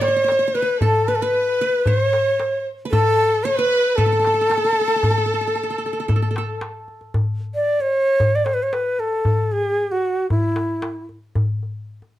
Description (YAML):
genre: Arabic maqam ensemble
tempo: 114 BPM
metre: 4/4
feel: straight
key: A maqam rast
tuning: A4 = 440 Hz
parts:
  - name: breathy bright ney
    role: melody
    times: 0.0-11.0 s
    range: E4 to D5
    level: -19 LUFS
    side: equal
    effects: none
  - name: clear chamber violin section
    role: second line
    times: 0.0-6.6 s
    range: A4 to C5+50c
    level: -27 LUFS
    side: right 1 dB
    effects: slapback echo
  - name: qanun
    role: second line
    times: 0.0-7.5 s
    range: A4 to D5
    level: -29 LUFS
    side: right 4 dB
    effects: none
  - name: darbuka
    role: percussion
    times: 0.0-12.1 s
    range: none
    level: -22 LUFS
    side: left 1 dB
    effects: none
room: light reverb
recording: dark, warm production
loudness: -17 LUFS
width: side -14 dB against mid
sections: 0.0-7.1 A section; 7.1-12.2 B section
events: none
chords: none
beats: 0.28 | 0.81 1.34 1.86 2.39 | 2.92 3.45 3.97 4.50 | 5.03 5.56 6.08 6.61 | 7.14 7.67 8.20 8.72 | 9.25 9.78 10.31 10.84 | 11.36 11.89